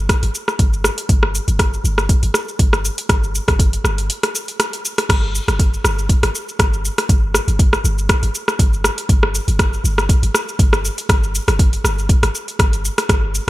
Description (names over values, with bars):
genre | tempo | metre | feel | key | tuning
afro house | 120 BPM | 4/4 | swing 54% on 16ths | unclear | A4 = 441 Hz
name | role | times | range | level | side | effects
warm 808-style bass | bass | 0.0-13.4 s | G1 | -20 LUFS | equal | sidechain pumping
deep house drum kit | drums | 0.1-13.5 s | crash cymbal, hi-hat, rim click, shaker | -19 LUFS | equal | small room reverb
electronic kick drum | drums | 0.1-13.2 s | none | -15 LUFS | equal | small room reverb
room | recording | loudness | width
little or no reverb | bright 1980s-style digital production | -14 LUFS | side -17 dB against mid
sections
0.0-13.5 A section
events
break 4.1-5.1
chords
none